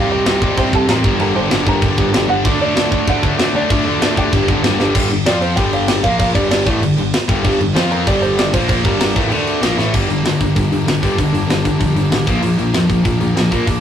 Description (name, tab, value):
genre	punk rock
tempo	193 BPM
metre	4/4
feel	straight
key	G minor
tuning	A4 = 440 Hz
part	open-back banjo	melody	0.0-9.7 s	G4 to C6	-22 LUFS	right 2 dB	none
part	distorted electric guitar	riff	0.0-13.8 s	G2 to F4	-18 LUFS	left 2 dB	distortion
part	heavy high-gain guitar	riff	0.0-13.8 s	G2 to F4	-23 LUFS	equal	distortion
part	sludgy distorted guitar	riff	0.0-4.9, 7.4-13.8 s	G2 to F4	-22 LUFS	right 3 dB	overdrive
part	fuzz picked electric bass	bass	0.0-13.8 s	G1 to Bb2	-23 LUFS	equal	overdrive
part	tight metal drum kit	drums	0.3-13.7 s	crash cymbal, hi-hat, kick drum, snare drum	-18 LUFS	equal	none
room	wet booth ambience, RT60 0.2 s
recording	rough rehearsal-room recording, warm saturation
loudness	-13 LUFS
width	side -9 dB against mid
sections	0.0-5.0 A section; 5.0-9.9 B section; 9.9-13.8 C section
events	drum fill 4.8, 9.8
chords	0.0 Cm; 1.0 Gm; 2.5 D; 3.7 Dm; 4.3 Gm; 5.0 G5; 5.3 F5; 5.6 G5; 6.0 Bb5; 6.4 G5; 7.8 F5; 8.1 G5; 8.5 Bb5; 8.8 Gm; 9.3 D5; 9.6 Fadd11; 9.9 Gm; 12.3 Bb